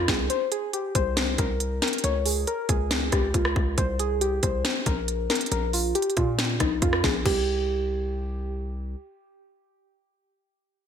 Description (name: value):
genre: hip hop, trap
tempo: 138 BPM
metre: 4/4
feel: half-time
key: unclear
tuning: A4 = 440 Hz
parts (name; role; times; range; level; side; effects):
- muted felt-like synth keys; melody; 0.0-8.5 s; Eb4 to Db5; -27 LUFS; equal; chorus, low-pass filter, digital delay
- distorted 808-style bass; bass; 0.0-9.0 s; Bb1 to Bb2; -28 LUFS; left 1 dB; distortion
- trap drum kit; drums; 0.1-7.4 s; crash cymbal, hi-hat, kick drum, rim click, snare drum; -25 LUFS; left 1 dB; gated reverb
room: light reverb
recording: bright 1980s-style digital production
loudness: -23 LUFS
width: side -8 dB against mid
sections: 0.0-7.3 A section; 7.3-10.7 B section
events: break 0.3-0.7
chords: 0.3 Abadd9 (rootless); 2.0 Db; 3.8 Abadd9 (rootless); 5.5 Bb5; 7.3 C5